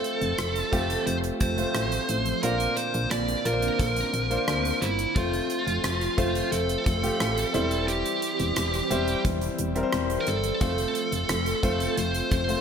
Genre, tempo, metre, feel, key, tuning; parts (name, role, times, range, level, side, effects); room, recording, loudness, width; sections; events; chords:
1980s-style pop; 88 BPM; 4/4; straight; F major; A4 = 440 Hz
high-gain lead guitar; melody; 0.0-12.6 s; E4 to D5; -28 LUFS; right 3 dB; distortion, digital delay
bright grand piano; accompaniment; 0.0-12.6 s; Bb2 to C5; -30 LUFS; left 2 dB
soft string machine; sustained chords; 0.1-12.6 s; D3 to C4; -33 LUFS; left 1 dB; phaser, ensemble chorus
gated 80s drum kit; drums; 0.0-12.6 s; hi-hat, kick drum, rim click; -31 LUFS; equal; gated reverb
solid FM bass; bass; 0.2-12.6 s; E1 to D2; -30 LUFS; equal
moderate lush hall reverb, RT60 1.6 s, small room ambience; bright 1980s-style digital production; -23 LUFS; side -7 dB against mid
0.0-12.6 A section
0.0 F; 2.4 Bbadd9; 5.2 F; 7.5 C/E; 10.6 F